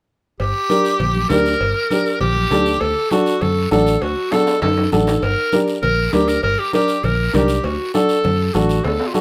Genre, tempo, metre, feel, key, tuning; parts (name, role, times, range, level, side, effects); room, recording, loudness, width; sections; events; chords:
latin, cumbia; 199 BPM; 4/4; straight; G harmonic minor; A4 = 440 Hz
bright clarinet; second line; 0.4-9.2 s; F4 to Bb4; -22 LUFS; equal
fingered electric bass; bass; 0.4-9.0 s; G1 to F#2; -23 LUFS; equal
cowbell and timbales; percussion; 0.4-9.2 s; -29 LUFS; equal
guiro; percussion; 0.4-9.2 s; -36 LUFS; equal
dark upright piano; accompaniment; 0.7-9.2 s; D4 to Bb4; -21 LUFS; equal
congas; percussion; 0.7-9.2 s; -28 LUFS; equal
light reverb; -17 LUFS; mono
0.4-9.2 A section
drum fill 4.3-5.2, 8.8-9.2
0.4 Gm; 2.8 D; 5.2 Gm; 7.6 D